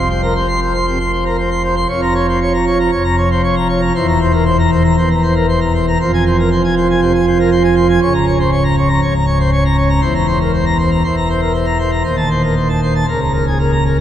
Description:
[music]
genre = classical, organ toccata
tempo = 118 BPM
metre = 4/4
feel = straight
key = unclear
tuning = A4 = 440 Hz
[part]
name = pipe organ, plenum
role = solo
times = 0.0-14.0 s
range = Db1 to C6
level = -12 LUFS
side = equal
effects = none
[sound]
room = wet cathedral reverb, RT60 4.8 s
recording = heard from further back in the room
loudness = -12 LUFS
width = side -10 dB against mid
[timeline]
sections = 0.0-14.0 A section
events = none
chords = 0.0 F5; 1.9 Bbmadd9/F; 3.9 C7/E; 6.0 Fm; 8.0 Bbm/Db; 10.0 C7/E; 12.1 Adim/Eb; 13.1 Bbm/Db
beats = 0.36 0.88 1.39 | 1.90 2.41 2.92 3.43 | 3.95 4.46 4.97 5.48 | 5.99 6.50 7.00 7.51 | 8.02 8.52 9.02 9.53 | 10.03 10.54 11.04 11.55 | 12.06 12.57 13.08 13.60

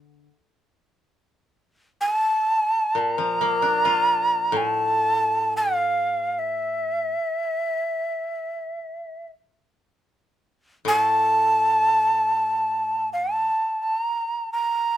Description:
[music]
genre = japanese traditional, Japanese chamber music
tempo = free time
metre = none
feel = none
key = unclear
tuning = A4 = 440 Hz
[part]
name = koto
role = accompaniment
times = 0.0-13.5 s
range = A2 to F4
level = -28 LUFS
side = left 3 dB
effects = none
[part]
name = breathy shakuhachi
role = melody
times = 2.0-15.0 s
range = E5 to Bb5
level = -21 LUFS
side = right 1 dB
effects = none
[sound]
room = light reverb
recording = none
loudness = -20 LUFS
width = side -12 dB against mid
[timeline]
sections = 0.0-1.1 A section; 1.1-15.0 A section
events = none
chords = none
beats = free time

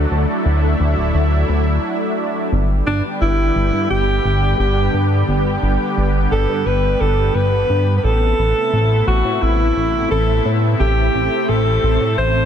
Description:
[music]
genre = synthwave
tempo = 87 BPM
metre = 4/4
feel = straight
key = G major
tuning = A4 = 441 Hz
[part]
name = analog string pad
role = sustained chords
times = 0.0-12.5 s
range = C3 to G4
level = -21 LUFS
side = equal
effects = ensemble chorus, shimmer reverb
[part]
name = chorused synth bass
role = bass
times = 0.0-12.5 s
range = D1 to A2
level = -17 LUFS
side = equal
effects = none
[part]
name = breathy alto saxophone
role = melody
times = 2.9-12.5 s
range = D4 to C5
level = -19 LUFS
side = equal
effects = shimmer reverb, tape echo
[sound]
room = light reverb, small room reverb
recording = dense, heavily limited modern master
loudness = -14 LUFS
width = side -8 dB against mid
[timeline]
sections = 0.0-12.5 A section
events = break 1.8-2.5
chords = 0.0 D; 2.5 G; 8.0 Amadd9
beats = 0.46 1.15 1.83 | 2.52 3.21 3.90 4.59 | 5.28 5.97 6.66 7.35 | 8.04 8.73 9.42 10.11 | 10.80 11.49 12.18

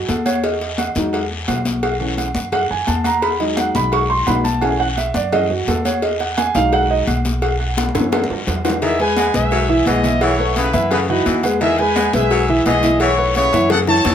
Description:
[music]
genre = latin, salsa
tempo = 172 BPM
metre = 4/4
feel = straight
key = E major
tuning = A4 = 441 Hz
[part]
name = dark grand piano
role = accompaniment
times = 0.0-14.1 s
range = E3 to C#6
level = -19 LUFS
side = right 2 dB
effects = none
[part]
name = upright bass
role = bass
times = 0.0-14.1 s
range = B1 to F#2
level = -23 LUFS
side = equal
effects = none
[part]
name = agogo bells and timbales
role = percussion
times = 0.1-14.1 s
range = none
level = -25 LUFS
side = right 5 dB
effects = none
[part]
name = congas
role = percussion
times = 0.1-14.1 s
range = none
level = -24 LUFS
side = left 3 dB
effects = none
[part]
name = cowbell and bongos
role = percussion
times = 0.1-14.1 s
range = none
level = -25 LUFS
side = left 5 dB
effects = none
[part]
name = guiro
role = percussion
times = 0.1-14.1 s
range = none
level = -30 LUFS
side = left 5 dB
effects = none
[part]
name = clear trumpet section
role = melody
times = 8.8-14.1 s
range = D#4 to A5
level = -19 LUFS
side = equal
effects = none
[part]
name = growling baritone saxophone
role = second line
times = 8.8-14.1 s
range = C#3 to G#3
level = -24 LUFS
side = left 4 dB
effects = none
[sound]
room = moderate studio reverb, RT60 0.5 s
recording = none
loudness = -15 LUFS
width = side -9 dB against mid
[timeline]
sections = 0.0-8.8 A section; 8.8-14.1 B section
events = grand piano solo 0.0-8.8; drum fill 7.8-8.8, 13.7-14.1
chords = 0.4 Emaj7; 1.8 B9sus4; 3.2 Emaj7; 4.6 B9sus4; 6.0 Emaj7; 7.4 B9sus4; 8.8 Emaj7; 10.2 B9sus4; 11.6 Emaj7; 13.0 B9sus4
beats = 0.09 | 0.43 0.78 1.13 1.48 | 1.83 2.18 2.53 2.88 | 3.23 3.58 3.93 4.28 | 4.63 4.98 5.33 5.68 | 6.03 6.38 6.72 7.07 | 7.42 7.77 8.12 8.47 | 8.82 9.17 9.52 9.87 | 10.22 10.57 10.91 11.26 | 11.61 11.96 12.31 12.66 | 13.01 13.36 13.71 14.05

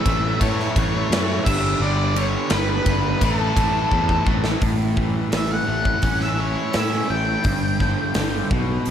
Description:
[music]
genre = classic rock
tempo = 85 BPM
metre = 4/4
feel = straight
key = A major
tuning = A4 = 439 Hz
[part]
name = octave-fuzz lead guitar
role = melody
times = 0.0-8.5 s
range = A4 to G5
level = -25 LUFS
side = left 1 dB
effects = distortion, slapback echo
[part]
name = cranked stack guitar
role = riff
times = 0.0-8.9 s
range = G2 to E4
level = -24 LUFS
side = right 1 dB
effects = overdrive
[part]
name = fuzz fingered electric bass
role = bass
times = 0.1-8.9 s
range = G1 to A2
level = -24 LUFS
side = equal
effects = overdrive
[part]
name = big rock drum kit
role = drums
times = 0.1-8.9 s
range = crash cymbal, hi-hat, kick drum, ride cymbal, snare drum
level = -23 LUFS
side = equal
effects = none
[sound]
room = light reverb, small room ambience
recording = none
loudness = -18 LUFS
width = side -9 dB against mid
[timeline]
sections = 0.0-4.6 A section; 4.6-8.9 B section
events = drum fill 3.9-4.6; lead electric guitar solo 4.6-8.9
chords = 0.0 A; 1.5 G5; 3.2 A5; 4.6 A; 7.5 G5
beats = 0.41 1.11 | 1.82 2.52 3.22 3.93 | 4.63 5.34 6.04 6.75 | 7.45 8.16 8.86

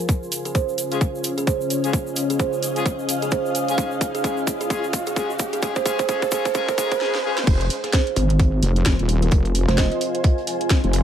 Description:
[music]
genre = bass house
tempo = 130 BPM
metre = 4/4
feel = swing 59% on 16ths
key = F minor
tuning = A4 = 441 Hz
[part]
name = dark analog pad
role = sustained chords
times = 0.0-11.0 s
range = Db3 to Ab4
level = -30 LUFS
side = left 4 dB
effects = chorus, sidechain pumping
[part]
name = granular cloud pad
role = texture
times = 0.0-11.0 s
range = Db4 to Ab5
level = -29 LUFS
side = left 1 dB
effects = built-in reverb, sidechain pumping
[part]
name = electronic kick drum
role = drums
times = 0.1-10.8 s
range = none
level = -20 LUFS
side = equal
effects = overdrive
[part]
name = garage drum kit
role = drums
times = 0.1-11.0 s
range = crash cymbal, hi-hat, snare drum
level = -28 LUFS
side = equal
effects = overdrive
[part]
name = egg shaker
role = percussion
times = 0.1-7.0 s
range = none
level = -32 LUFS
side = right 1 dB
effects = none
[part]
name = riser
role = sound effects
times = 1.7-7.5 s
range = none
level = -33 LUFS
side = equal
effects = none
[part]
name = kalimba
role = melody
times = 0.5-10.0 s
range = Ab4 to Eb5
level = -26 LUFS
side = right 8 dB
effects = none
[part]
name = warm horn section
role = stabs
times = 0.9-7.4 s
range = Ab3 to Ab4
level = -29 LUFS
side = left 7 dB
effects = sidechain pumping, ping-pong delay
[part]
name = wobble bass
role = bass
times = 7.5-11.0 s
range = Eb1 to F1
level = -19 LUFS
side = equal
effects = chorus, sidechain pumping
[part]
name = vintage brush drum kit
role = drums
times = 7.5-11.0 s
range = hi-hat, snare drum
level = -36 LUFS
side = right 3 dB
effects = none
[part]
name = pulsing pluck wobble bass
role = bass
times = 8.2-9.9 s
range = F1 to Ab1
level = -18 LUFS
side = equal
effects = distortion, chorus, tube saturation, sidechain pumping
[sound]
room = light reverb, small room ambience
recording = high-pass filter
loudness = -19 LUFS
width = side -9 dB against mid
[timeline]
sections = 0.0-7.5 A section; 7.5-11.0 B section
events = build-up 0.0-7.5; filter sweep on horn section 0.0-7.5; drum fill 0.1-7.0, 7.0-7.5; riser 1.7-7.5; drop 7.5-11.0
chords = 0.1 Db; 7.5 Fm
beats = | 0.09 0.55 1.01 1.47 | 1.93 2.40 2.86 3.32 | 3.78 4.24 4.70 5.16 | 5.63 6.09 6.55 7.01 | 7.47 7.93 8.39 8.86 | 9.32 9.78 10.24 10.70

